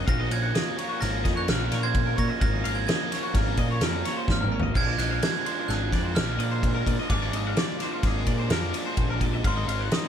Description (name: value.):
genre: math rock and midwest emo.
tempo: 128 BPM.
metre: 5/4.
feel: straight.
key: unclear.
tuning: A4 = 439 Hz.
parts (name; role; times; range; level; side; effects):
glockenspiel with brass mallets; melody; 0.0-10.1 s; C6 to Bb6; -33 LUFS; right 6 dB; slapback echo.
twangy electric guitar; arpeggios; 0.0-10.1 s; F4 to Gb5; -33 LUFS; left 3 dB; none.
raw garage guitar; riff; 0.0-10.1 s; Ab2 to Eb4; -32 LUFS; right 1 dB; overdrive.
growling picked electric bass; bass; 0.0-9.9 s; Ab1 to Bb2; -28 LUFS; equal; overdrive.
loose indie drum kit; drums; 0.1-10.0 s; crash cymbal, kick drum, ride cymbal, snare drum, toms; -27 LUFS; equal; none.
room: light reverb.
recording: none.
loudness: -23 LUFS.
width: side -8 dB against mid.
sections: 0.0-10.1 A section.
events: drum fill 4.3-4.8.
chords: 0.1 Bbm7; 4.8 Bb7; 9.4 Ab7.